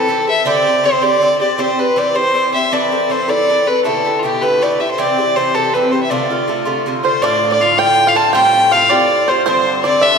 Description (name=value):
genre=celtic folk, Celtic jig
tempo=106 BPM (dotted quarters)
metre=6/8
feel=straight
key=D dorian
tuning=A4 = 440 Hz
part: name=warm fiddle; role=melody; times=0.0-10.2 s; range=F4 to A5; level=-13 LUFS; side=equal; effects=none
part: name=Irish bouzouki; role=accompaniment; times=0.0-10.2 s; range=G2 to C5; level=-18 LUFS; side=equal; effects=none
part: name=bluegrass banjo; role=second line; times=7.0-10.2 s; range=C5 to A5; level=-18 LUFS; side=right 4 dB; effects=none
room=wet scoring stage reverb, RT60 2.0 s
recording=heard from further back in the room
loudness=-12 LUFS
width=side -6 dB against mid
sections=0.0-7.2 A section; 7.2-10.2 B section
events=none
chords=0.5 Gsus4; 1.6 C; 2.7 Amadd9; 3.9 Em7; 5.0 C; 6.1 Dm7; 7.2 Dm; 8.3 Fadd9; 9.5 Gsus4